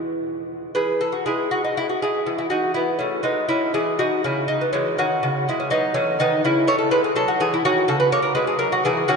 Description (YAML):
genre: classical, baroque-style dance for lute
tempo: 123 BPM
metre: 3/4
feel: rubato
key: E major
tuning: A4 = 441 Hz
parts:
  - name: lute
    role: solo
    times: 0.0-9.2 s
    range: E2 to C#5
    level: -19 LUFS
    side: equal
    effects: ping-pong delay
room: wet cathedral reverb, RT60 5.5 s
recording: dreamy mix soaked in reverb, nothing above 10.5 kHz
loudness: -19 LUFS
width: side -4 dB against mid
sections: 0.8-9.2 A section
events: none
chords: 0.0 E; 3.7 C#m; 8.1 F#7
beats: 0.22 | 0.76 1.27 1.78 | 2.27 2.76 3.25 | 3.75 4.24 4.74 | 5.24 5.72 6.20 | 6.68 7.16 7.64 | 8.12 8.60 9.08